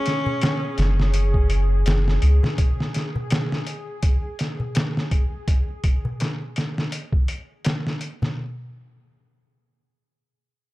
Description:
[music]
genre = trip hop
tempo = 83 BPM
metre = 4/4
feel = swing 56% on 16ths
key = unclear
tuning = A4 = 440 Hz
[part]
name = rich cello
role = melody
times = 0.0-1.2 s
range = C#4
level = -29 LUFS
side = left 1 dB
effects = tape echo
[part]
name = bowed-like drone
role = texture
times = 0.0-5.5 s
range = G#4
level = -34 LUFS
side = left 1 dB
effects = built-in reverb
[part]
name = trip hop sampler-style drum kit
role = drums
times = 0.1-8.4 s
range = hi-hat, kick drum, snare drum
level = -22 LUFS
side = equal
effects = overdrive
[part]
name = darbuka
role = percussion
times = 0.3-8.3 s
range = none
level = -30 LUFS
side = left 1 dB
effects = none
[part]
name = soft dub sub bass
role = bass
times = 0.8-2.4 s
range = F#1 to C#2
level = -18 LUFS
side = equal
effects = none
[sound]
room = little or no reverb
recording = dark, warm production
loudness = -20 LUFS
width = side -18 dB against mid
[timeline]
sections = 0.0-8.4 A section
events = none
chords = 0.0 A6 (rootless); 1.1 F#sus2; 2.6 N.C.

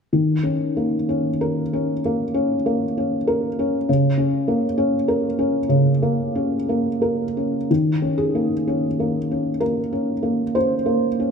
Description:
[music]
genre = neoclassical minimalist piano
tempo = 57-68 BPM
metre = 4/4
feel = rubato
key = unclear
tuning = A4 = 440 Hz
[part]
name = felt-muted upright piano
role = solo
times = 0.1-11.3 s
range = Db3 to C5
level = -18 LUFS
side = equal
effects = none
[sound]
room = moderate recital hall reverb, RT60 1.4 s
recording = close, detailed microphones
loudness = -19 LUFS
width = side -6 dB against mid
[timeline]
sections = 0.1-7.7 A section; 7.7-11.3 B section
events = none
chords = 0.1 Eb5; 3.9 Bbm/Db; 7.7 Eb5

